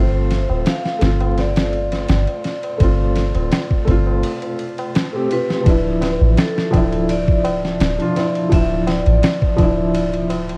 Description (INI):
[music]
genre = trip hop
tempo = 84 BPM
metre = 4/4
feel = straight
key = D dorian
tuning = A4 = 440 Hz
[part]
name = vibraphone with medium hard mallets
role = melody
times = 0.0-10.3 s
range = A4 to F5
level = -27 LUFS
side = equal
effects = tape echo
[part]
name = felt-muted upright piano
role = accompaniment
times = 0.0-10.6 s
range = F3 to G4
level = -23 LUFS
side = equal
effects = tremolo, tape echo
[part]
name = soft 808-style bass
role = bass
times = 0.0-10.6 s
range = D1 to A1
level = -22 LUFS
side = equal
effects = tube saturation
[part]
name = tabla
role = percussion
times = 0.1-10.6 s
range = none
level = -35 LUFS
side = equal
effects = none
[part]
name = boom bap sampler-style drum kit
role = drums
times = 0.3-10.6 s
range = kick drum, ride cymbal, snare drum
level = -22 LUFS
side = equal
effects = none
[sound]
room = small room reverb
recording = worn, warbling old tape, cassette tape, vinyl crackle, warbly pitch drift, lossy compression artefacts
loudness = -18 LUFS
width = mono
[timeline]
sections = 0.0-5.7 A section; 5.7-10.6 B section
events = break 4.2-5.7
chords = 0.0 G7sus4; 5.7 Dmadd9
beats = 0.66 1.38 2.09 | 2.81 3.52 4.23 4.95 | 5.66 6.38 7.09 7.81 | 8.52 9.23 9.95